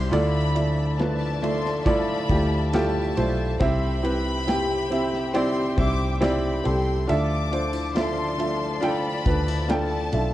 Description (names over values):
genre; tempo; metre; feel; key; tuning
pop ballad; 69 BPM; 4/4; straight; unclear; A4 = 440 Hz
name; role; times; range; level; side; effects
warm studio violin section; second line; 0.0-10.3 s; A5 to D6; -32 LUFS; left 3 dB; ping-pong delay
dark baby grand piano; accompaniment; 0.0-10.3 s; C3 to G5; -25 LUFS; right 1 dB; none
dark studio string section; sustained chords; 0.0-10.3 s; F3 to A5; -34 LUFS; left 3 dB; none
fingerpicked plugged-in steel-string acoustic guitar; arpeggios; 0.0-10.3 s; C3 to G4; -31 LUFS; left 1 dB; none
vintage muted fingered electric bass; bass; 0.0-10.3 s; B1 to D2; -27 LUFS; equal; none
downlifter; sound effects; 0.0-3.6 s; none; -48 LUFS; left 1 dB; none
modern studio drum kit; drums; 0.1-10.3 s; kick drum, ride cymbal, snare drum; -28 LUFS; equal; none
room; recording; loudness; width
light reverb, small room ambience; worn, warbling old tape, cassette tape, warbly pitch drift; -21 LUFS; side -14 dB against mid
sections
0.0-10.3 A section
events
none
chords
0.1 Dmadd9; 3.6 C; 7.1 Dmadd9